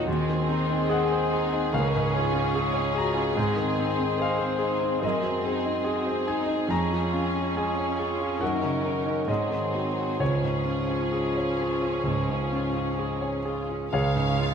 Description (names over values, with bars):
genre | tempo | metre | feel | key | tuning
classical, romantic movement for piano and orchestra | 64-74 BPM | 4/4 | rubato | Db major | A4 = 440 Hz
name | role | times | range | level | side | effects
clear concert grand piano | melody | 0.0-14.5 s | Db2 to Bb5 | -27 LUFS | equal | none
rich studio violin section | melody | 0.0-14.5 s | Ab4 to Db5 | -35 LUFS | left 2 dB | none
rich studio violin section | second line | 0.0-14.5 s | Ab3 to F5 | -36 LUFS | left 3 dB | none
mellow bassoon | accompaniment | 0.0-13.5 s | Eb3 to Ab3 | -34 LUFS | right 2 dB | none
warm studio viola section | accompaniment | 0.0-14.5 s | Ab3 to F4 | -35 LUFS | right 4 dB | none
warm French horn section | sustained chords | 0.0-14.5 s | Ab3 to C5 | -32 LUFS | left 4 dB | none
concert flute | second line | 0.1-13.6 s | C6 to Db6 | -36 LUFS | equal | none
rich studio cello section | bass | 0.1-12.8 s | Db2 to Db3 | -36 LUFS | right 5 dB | none
clear studio double bass section | bass | 13.9-14.5 s | Db2 | -32 LUFS | right 7 dB | none
room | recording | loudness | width
moderate concert hall reverb, RT60 2.0 s | none | -24 LUFS | side -7 dB against mid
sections
0.0-13.9 A section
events
none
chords
0.1 Ab7/Eb; 1.7 Db; 3.4 Ab; 5.0 Ab7/Gb; 6.7 Db/F; 8.4 Ebm7/Gb; 9.3 Ab7; 10.2 Db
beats
| 0.07 0.90 1.73 2.56 | 3.38 4.21 5.04 5.86 | 6.70 7.56 8.41 9.29 | 10.20 11.14 12.07 12.99 | 13.93